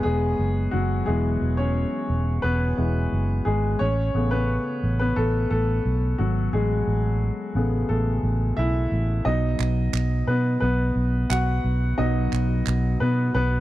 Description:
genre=piano-driven pop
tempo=88 BPM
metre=4/4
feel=straight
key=unclear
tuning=A4 = 440 Hz
part: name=warm baby grand piano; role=accompaniment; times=0.0-13.6 s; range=C#3 to F#5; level=-25 LUFS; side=left 1 dB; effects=none
part: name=vintage muted fingered electric bass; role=bass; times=0.1-13.6 s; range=E1 to B2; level=-23 LUFS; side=right 1 dB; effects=none
part: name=group handclap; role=percussion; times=9.6-12.8 s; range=none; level=-32 LUFS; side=right 12 dB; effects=none
room=small room ambience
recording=dry, close 1970s-style studio recording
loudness=-21 LUFS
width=side -15 dB against mid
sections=0.0-9.3 A section; 9.3-13.6 B section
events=grand piano solo 0.0-9.3, 9.3-13.6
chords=0.0 E; 3.8 Aadd9; 9.3 B

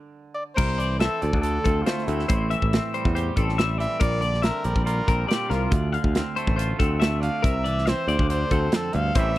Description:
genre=math rock and midwest emo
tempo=140 BPM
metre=4/4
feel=straight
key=D minor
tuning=A4 = 440 Hz
part: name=twangy electric guitar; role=accompaniment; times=0.0-9.4 s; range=D2 to G4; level=-31 LUFS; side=right 6 dB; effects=none
part: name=warm trumpet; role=melody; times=0.3-9.4 s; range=E4 to F5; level=-29 LUFS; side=equal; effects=none
part: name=twelve-string electric guitar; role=arpeggios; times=0.6-9.4 s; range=A4 to F5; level=-29 LUFS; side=left 8 dB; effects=none
part: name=picked electric bass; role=bass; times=0.6-9.4 s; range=A1 to E2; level=-25 LUFS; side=equal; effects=none
part: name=modern studio drum kit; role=drums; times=0.6-9.4 s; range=crash cymbal, hi-hat, kick drum, snare drum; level=-24 LUFS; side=equal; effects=none
room=studio reverb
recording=dry, close 1970s-style studio recording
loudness=-21 LUFS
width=side -16 dB against mid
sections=0.6-9.4 A section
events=stop 0.0-0.6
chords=0.0 N.C.; 0.6 C7; 1.2 D5; 2.3 Am7; 4.0 Bb69; 5.7 Dm7; 7.4 C7; 8.1 Dm7

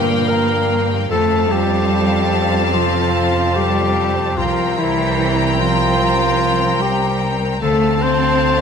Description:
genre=cinematic, emotional film score for orchestra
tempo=74 BPM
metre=4/4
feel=rubato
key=unclear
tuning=A4 = 440 Hz
part: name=rich studio violin section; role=melody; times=0.0-8.6 s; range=G5 to Bb5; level=-25 LUFS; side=left 4 dB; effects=none
part: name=mellow clarinet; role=second line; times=0.0-8.6 s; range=Bb3 to C5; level=-20 LUFS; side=left 1 dB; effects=none
part: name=mellow hollow concert flute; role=second line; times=0.0-8.6 s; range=Bb4 to C6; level=-24 LUFS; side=left 1 dB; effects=none
part: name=rich studio violin section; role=second line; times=0.0-8.6 s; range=F5 to G5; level=-26 LUFS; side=left 2 dB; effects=none
part: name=rich studio viola section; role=accompaniment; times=0.0-8.6 s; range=Bb3 to C4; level=-25 LUFS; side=right 1 dB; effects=none
part: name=mellow French horn section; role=sustained chords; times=0.0-8.6 s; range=F3 to Bb4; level=-26 LUFS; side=left 6 dB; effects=none
part: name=concert harp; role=arpeggios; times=0.0-8.6 s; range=F2 to Bb5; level=-26 LUFS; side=left 7 dB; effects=none
part: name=clear studio double bass section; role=bass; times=0.0-8.6 s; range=C2 to G2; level=-22 LUFS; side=right 4 dB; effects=none
part: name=rich studio cello section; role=bass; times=0.0-8.6 s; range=Bb2 to C4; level=-22 LUFS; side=right 2 dB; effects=none
room=moderate scoring stage reverb, RT60 1.7 s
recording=none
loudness=-14 LUFS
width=side -6 dB against mid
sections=0.0-8.6 A section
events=none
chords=0.0 Gm7; 1.1 F; 4.4 C7sus4; 7.6 Dm7

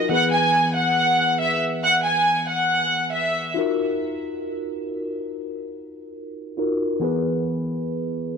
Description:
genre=hip hop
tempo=139 BPM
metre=4/4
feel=half-time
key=Eb minor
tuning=A4 = 438 Hz
part: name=warm studio violin section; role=melody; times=0.0-3.5 s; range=E5 to G#5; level=-19 LUFS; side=equal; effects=none
part: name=tine electric piano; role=accompaniment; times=0.0-8.4 s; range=E3 to B4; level=-25 LUFS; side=left 1 dB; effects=phaser, low-pass filter
room=light reverb, studio ambience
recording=dry, gritty hardware recording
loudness=-20 LUFS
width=side -6 dB against mid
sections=0.0-3.6 A section; 3.6-8.4 B section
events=none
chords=0.1 E; 3.6 Ebmadd9; 7.0 E

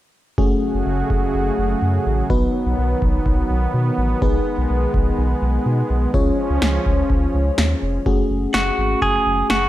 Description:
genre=synth-pop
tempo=125 BPM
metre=4/4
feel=straight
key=F# dorian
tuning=A4 = 440 Hz
part: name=FM electric piano with soft pad layer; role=accompaniment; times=0.4-9.7 s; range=A3 to C#5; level=-23 LUFS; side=left 2 dB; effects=chorus
part: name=brassy analog pad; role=sustained chords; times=0.4-8.0 s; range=C#3 to G#4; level=-24 LUFS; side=right 2 dB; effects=chorus
part: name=round analog bass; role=bass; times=0.4-9.7 s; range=E#1 to B2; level=-21 LUFS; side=equal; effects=none
part: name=electro analog drum machine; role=drums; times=0.4-9.6 s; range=kick drum, snare drum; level=-21 LUFS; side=equal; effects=overdrive, gated reverb
part: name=direct-recorded clean electric guitar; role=melody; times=8.5-9.7 s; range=F#4 to G#4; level=-18 LUFS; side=right 2 dB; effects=spring reverb, slapback echo
room=light reverb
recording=none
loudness=-17 LUFS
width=side -14 dB against mid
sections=0.4-8.1 A section; 8.1-9.7 B section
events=none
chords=0.4 F#madd9; 2.3 B; 4.2 G#m/B; 6.1 C#; 8.1 F#madd9

